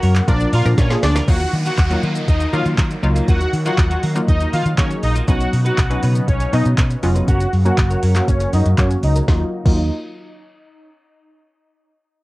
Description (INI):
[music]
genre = dance-pop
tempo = 120 BPM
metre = 4/4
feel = straight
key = Eb minor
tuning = A4 = 440 Hz
[part]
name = lush unison pad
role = sustained chords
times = 0.0-9.5 s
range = C#3 to Gb4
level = -30 LUFS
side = equal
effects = chorus, phaser, sidechain pumping, low-pass filter
[part]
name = twelve-string electric guitar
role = riff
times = 0.0-9.8 s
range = Gb3 to B4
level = -29 LUFS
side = right 2 dB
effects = ensemble chorus, low-pass filter
[part]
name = vintage muted fingered electric bass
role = bass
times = 0.0-9.9 s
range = F1 to Eb3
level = -18 LUFS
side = equal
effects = sidechain pumping
[part]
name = smooth R&B drum kit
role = drums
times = 0.0-9.8 s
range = crash cymbal, handclaps, hi-hat, kick drum, shaker, snare drum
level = -18 LUFS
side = equal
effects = cassette tape
[part]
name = soft supersaw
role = melody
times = 0.3-9.9 s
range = Db4 to Gb5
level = -24 LUFS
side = equal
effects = sidechain pumping, low-pass filter, analog delay
[part]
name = analog pluck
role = accompaniment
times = 0.3-9.9 s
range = F3 to Bb4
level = -24 LUFS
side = equal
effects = chorus, sidechain pumping, low-pass filter
[part]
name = downlifter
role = sound effects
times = 1.3-5.3 s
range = none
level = -33 LUFS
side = equal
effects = none
[sound]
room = little or no reverb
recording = home recording on cassette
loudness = -14 LUFS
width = side -20 dB against mid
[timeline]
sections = 0.0-1.3 A section; 1.3-9.3 B section; 9.3-11.3 C section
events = drop 0.0-1.3; drum fill 0.8-1.3; filter sweep 1.3-9.3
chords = 0.3 Bb; 1.3 Ebmadd9; 5.3 Badd9; 7.3 Gb; 9.3 Ebmadd9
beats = 0.28 0.78 | 1.28 1.78 2.28 2.78 | 3.28 3.78 4.28 4.78 | 5.28 5.78 6.28 6.78 | 7.28 7.78 8.28 8.78 | 9.28 9.78